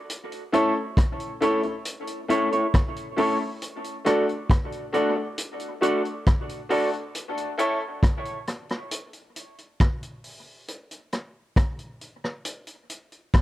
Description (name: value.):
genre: dub reggae.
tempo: 68 BPM.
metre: 4/4.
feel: straight.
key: A major.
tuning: A4 = 440 Hz.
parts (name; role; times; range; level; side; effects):
vintage drum kit; drums; 0.1-13.4 s; hi-hat, kick drum, rim click; -23 LUFS; equal; none.
electric guitar through a small old amp; accompaniment; 0.5-7.8 s; E4 to D5; -26 LUFS; right 2 dB; spring reverb, high-pass filter, tape echo.
clear grand piano; stabs; 0.5-7.8 s; A3 to A4; -27 LUFS; left 3 dB; high-pass filter, tape echo.
room: light reverb.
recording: dry, close 1970s-style studio recording.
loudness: -23 LUFS.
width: side -14 dB against mid.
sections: 0.1-13.4 A section.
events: break 7.1-13.4.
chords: 0.1 A; 3.6 D; 7.1 A; 10.7 N.C..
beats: | 0.09 0.97 1.85 2.73 | 3.61 4.50 5.38 6.26 | 7.14 8.03 8.91 9.80 | 10.68 11.57 12.45 13.33.